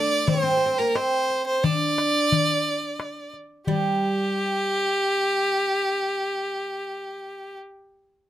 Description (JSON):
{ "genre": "Arabic maqam ensemble", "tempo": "88 BPM", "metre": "3/4", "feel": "straight", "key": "unclear", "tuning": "A4 = 440 Hz", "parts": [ { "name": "clear violin", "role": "melody", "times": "0.0-7.6 s", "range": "G4 to D5", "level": "-23 LUFS", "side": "equal", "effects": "none" }, { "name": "oud", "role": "second line", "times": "0.0-7.6 s", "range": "G3 to D4", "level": "-27 LUFS", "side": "right 3 dB", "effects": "none" }, { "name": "darbuka", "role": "percussion", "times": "0.3-4.0 s", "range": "none", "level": "-26 LUFS", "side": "left 5 dB", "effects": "none" } ], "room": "light reverb", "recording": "close, detailed microphones", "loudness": "-21 LUFS", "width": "side -12 dB against mid", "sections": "0.0-3.7 A section; 3.7-7.8 B section", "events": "none", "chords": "none", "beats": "0.28 0.95 | 1.63 2.31 3.00 | 3.67 4.36 5.04 | 5.72 6.40 7.08" }